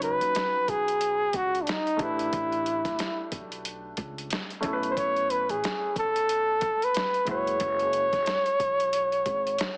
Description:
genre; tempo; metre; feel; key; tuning
hip hop, jazz-hop; 91 BPM; 4/4; swing 59% on 16ths; unclear; A4 = 441 Hz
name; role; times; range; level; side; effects
breathy flugelhorn; melody; 0.0-9.8 s; D4 to C#5; -28 LUFS; equal; none
warm upright piano; accompaniment; 0.0-9.8 s; F#3 to B4; -38 LUFS; equal; none
upright bass; bass; 0.0-9.6 s; F#1 to D#2; -44 LUFS; equal; none
boom bap sampler-style drum kit; drums; 0.0-9.8 s; hi-hat, kick drum, snare drum; -37 LUFS; equal; none
room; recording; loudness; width
light reverb, small room ambience; heavily compressed radio sound, multiband compression, small speaker sound; -27 LUFS; mono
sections
0.0-9.8 A section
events
none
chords
0.0 C#9sus4; 2.0 A9sus4; 4.6 B9sus4; 7.3 F#9sus4

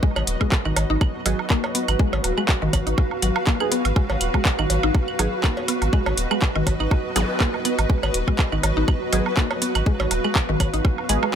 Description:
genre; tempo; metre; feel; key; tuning
minimal techno; 122 BPM; 4/4; swing 55% on 16ths; G# dorian; A4 = 441 Hz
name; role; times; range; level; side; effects
mallet-like synth pluck; riff; 0.0-11.3 s; D#3 to D#4; -27 LUFS; left 1 dB; wide subtle chorus, sidechain pumping, ping-pong delay
electronic kick drum; drums; 0.0-11.0 s; none; -22 LUFS; equal; none
granular cloud pad; texture; 0.0-11.4 s; F#4 to E#5; -26 LUFS; right 1 dB; built-in reverb, sidechain pumping
saturated sub bass; bass; 0.2-11.2 s; D#1 to G#1; -24 LUFS; equal; sidechain pumping
cowbell, claves and woodblock; percussion; 0.2-11.3 s; none; -29 LUFS; right 5 dB; dub echo
booming analog drum machine; drums; 0.3-11.2 s; handclaps, hi-hat; -25 LUFS; equal; none
filtered dub chord stab; stabs; 1.3-11.2 s; B3 to G#4; -30 LUFS; right 3 dB; phaser, analog chorus, cassette tape, dub echo
zap; sound effects; 7.2-7.3 s; none; -31 LUFS; equal; none
room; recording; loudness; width
light reverb; none; -19 LUFS; side -8 dB against mid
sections
0.0-11.4 A section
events
none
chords
0.0 G#m

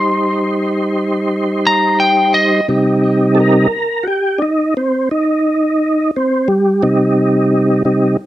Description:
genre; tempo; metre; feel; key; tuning
blues; 58 BPM (dotted quarters); 12/8; straight; C minor; A4 = 440 Hz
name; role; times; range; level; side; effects
lightly driven lead guitar; melody; 0.0-2.7 s; Eb5 to C6; -14 LUFS; left 1 dB; none
tonewheel organ; sustained chords; 0.0-8.2 s; C3 to C5; -13 LUFS; right 1 dB; slow rotary speaker, chorus vibrato
room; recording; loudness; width
light reverb; dry, close 1970s-style studio recording; -12 LUFS; side -14 dB against mid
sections
0.0-2.7 A section; 2.7-8.3 A section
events
lead electric guitar solo 0.0-2.7; tonewheel organ solo 2.7-8.3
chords
0.0 Cm

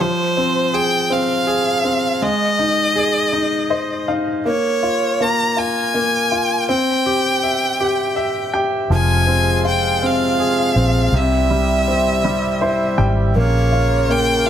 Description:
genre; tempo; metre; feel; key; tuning
six-eight pop ballad; 54 BPM (dotted quarters); 6/8; straight; F minor; A4 = 440 Hz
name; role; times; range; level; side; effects
clear violin; melody; 0.0-14.5 s; C5 to Bb5; -19 LUFS; equal; digital delay
bright grand piano; accompaniment; 0.0-14.5 s; C3 to G5; -19 LUFS; left 1 dB; none
pedal harmonium; sustained chords; 8.9-14.5 s; C3 to F4; -22 LUFS; right 1 dB; none
vintage muted fingered electric bass; bass; 8.9-14.5 s; F1 to C2; -18 LUFS; equal; none
room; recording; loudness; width
light reverb, small room ambience; none; -15 LUFS; side -9 dB against mid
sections
0.0-14.5 A section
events
grand piano fill 3.3-4.4, 7.8-8.9, 12.2-13.4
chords
0.0 Fm; 2.2 Ab; 4.4 Bbm; 6.7 C; 8.9 Fm; 11.1 C; 13.4 Bbm

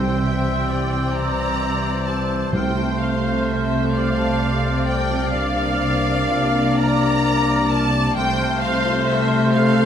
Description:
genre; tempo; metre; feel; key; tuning
cinematic; 43 BPM (dotted quarters); 6/8; rubato; unclear; A4 = 440 Hz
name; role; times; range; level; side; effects
rich symphonic violin section; melody; 0.0-9.9 s; E5 to Bb5; -28 LUFS; equal; none
clear symphonic violin section; second line; 0.0-9.9 s; E5 to Bb5; -28 LUFS; left 1 dB; none
mellow clarinet; second line; 0.0-9.9 s; G3 to Bb3; -26 LUFS; right 1 dB; none
mellow large flute ensemble; second line; 0.0-9.9 s; E6 to F6; -30 LUFS; equal; none
warm oboe; second line; 0.0-9.9 s; C5 to D5; -30 LUFS; right 1 dB; none
rich symphonic viola section; accompaniment; 0.0-9.9 s; A4 to E5; -28 LUFS; equal; none
mellow French horn section; sustained chords; 0.0-9.9 s; E3 to D4; -24 LUFS; left 3 dB; none
concert harp; arpeggios; 0.0-9.9 s; C3 to A5; -28 LUFS; left 4 dB; none
rich studio double bass section; bass; 0.0-9.9 s; C2; -26 LUFS; right 2 dB; none
rich symphonic cello section; bass; 0.0-9.9 s; C3; -26 LUFS; right 2 dB; none
timpani; percussion; 0.0-3.9 s; C3; -28 LUFS; right 2 dB; none
room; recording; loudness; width
moderate scoring stage reverb, RT60 2.1 s; none; -17 LUFS; side -9 dB against mid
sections
0.0-9.9 A section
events
none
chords
0.0 C; 2.5 F/C; 5.3 Bb/C; 8.2 F/C

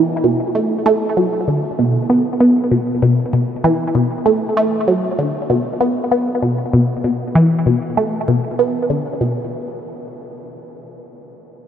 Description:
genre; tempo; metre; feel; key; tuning
ambient; 97 BPM; 4/4; straight; B minor; A4 = 440 Hz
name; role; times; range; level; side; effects
resonant blip pluck; solo; 0.0-9.5 s; B2 to B3; -15 LUFS; equal; phaser, tape echo
room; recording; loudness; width
wet huge ambient reverb, RT60 7.7 s; cassette tape; -14 LUFS; side -9 dB against mid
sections
0.0-9.2 A section; 9.2-11.7 B section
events
none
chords
none

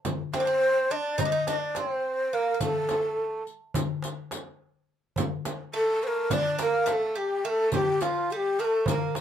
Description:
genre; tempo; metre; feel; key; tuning
Turkish makam ensemble; 211 BPM (eighths); 9/8; straight; unclear; A4 = 442 Hz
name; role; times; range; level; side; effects
frame drum; percussion; 0.0-9.2 s; none; -34 LUFS; right 4 dB; none
darbuka; percussion; 0.1-9.2 s; none; -32 LUFS; left 3 dB; none
riq; percussion; 0.1-9.2 s; none; -39 LUFS; left 2 dB; none
breathy mellow ney; melody; 0.3-9.2 s; F4 to Eb5; -25 LUFS; equal; none
Greek bouzouki; second line; 0.3-9.2 s; F3 to Eb4; -32 LUFS; right 4 dB; none
room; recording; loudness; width
light reverb; minimal, uncompressed stereo recording; -24 LUFS; side -9 dB against mid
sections
0.0-9.2 A section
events
none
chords
none

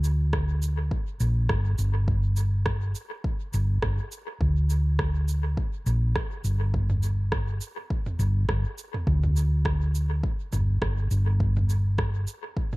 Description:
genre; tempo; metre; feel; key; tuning
ambient dub; 103 BPM; 4/4; swing 56% on 16ths; G minor; A4 = 440 Hz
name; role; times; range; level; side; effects
hollow-body short-scale fingered electric bass; bass; 0.0-12.2 s; G1 to D2; -23 LUFS; equal; none
organic electronic drum kit; drums; 0.0-12.8 s; cabasa, rim click, toms; -34 LUFS; right 1 dB; dub echo
electronic kick drum; drums; 0.3-12.7 s; none; -29 LUFS; equal; none
room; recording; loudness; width
digital ambience; echo-heavy mix; -23 LUFS; side -22 dB against mid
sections
0.0-12.8 A section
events
none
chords
none

